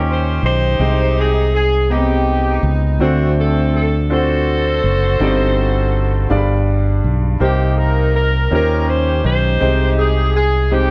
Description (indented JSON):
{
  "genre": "slow gospel",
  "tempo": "54 BPM (dotted quarters)",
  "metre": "6/8",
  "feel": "straight",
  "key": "C minor",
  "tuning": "A4 = 441 Hz",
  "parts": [
    { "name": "mellow saxophone section", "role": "melody", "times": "0.0-10.9 s", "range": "A3 to C5", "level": "-20 LUFS", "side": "equal", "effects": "none" },
    { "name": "clear grand piano", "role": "accompaniment", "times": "0.0-10.9 s", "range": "G2 to B5", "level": "-23 LUFS", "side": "equal", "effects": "none" },
    { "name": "fingered electric bass", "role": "bass", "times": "0.0-10.9 s", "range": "F#1 to Eb2", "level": "-19 LUFS", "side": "equal", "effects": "none" }
  ],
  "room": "light reverb, studio reverb",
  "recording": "none",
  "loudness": "-16 LUFS",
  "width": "mono",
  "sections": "0.0-7.4 A section; 7.4-10.9 A section",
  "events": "none",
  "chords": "0.0 Eb13; 0.8 Abmaj7/C; 3.0 D7; 5.2 Cm/G; 6.3 G7; 7.4 Cm7; 8.5 Eb13; 9.6 Abmaj7/C"
}